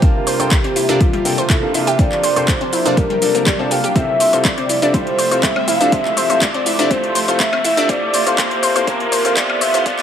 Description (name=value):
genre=progressive house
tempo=122 BPM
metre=4/4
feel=straight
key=unclear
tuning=A4 = 440 Hz
part: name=warm velvety synth lead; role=melody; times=0.0-10.0 s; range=F4 to F5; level=-18 LUFS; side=equal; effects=chorus, sidechain pumping, tape echo
part: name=evolving wavetable pad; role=sustained chords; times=0.0-10.0 s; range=C3 to E5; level=-26 LUFS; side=right 2 dB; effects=phaser, built-in reverb, sidechain pumping
part: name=analog pluck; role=arpeggios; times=0.0-9.9 s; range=G3 to C5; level=-21 LUFS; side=left 1 dB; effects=chorus, sidechain pumping, dub echo
part: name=clear grand piano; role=stabs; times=0.0-10.0 s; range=C3 to A5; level=-22 LUFS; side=left 1 dB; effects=sidechain pumping, dub echo
part: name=deep house drum kit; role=drums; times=0.0-10.0 s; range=handclaps, hi-hat, shaker, woodblock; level=-21 LUFS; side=left 1 dB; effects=overdrive, small room ambience
part: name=electronic kick drum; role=drums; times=0.0-10.0 s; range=none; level=-17 LUFS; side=equal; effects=overdrive, small room ambience
part: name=riser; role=sound effects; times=0.7-10.0 s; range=none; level=-26 LUFS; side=equal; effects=none
room=moderate digital room reverb, RT60 1.4 s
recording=high-pass filter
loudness=-13 LUFS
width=side -9 dB against mid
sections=0.0-10.0 A section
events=build-up 0.0-10.0; filter sweep 0.0-10.0; riser 0.7-10.0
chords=0.0 Bbmaj7/C; 4.0 Fmaj7/C; 7.9 Gm7/C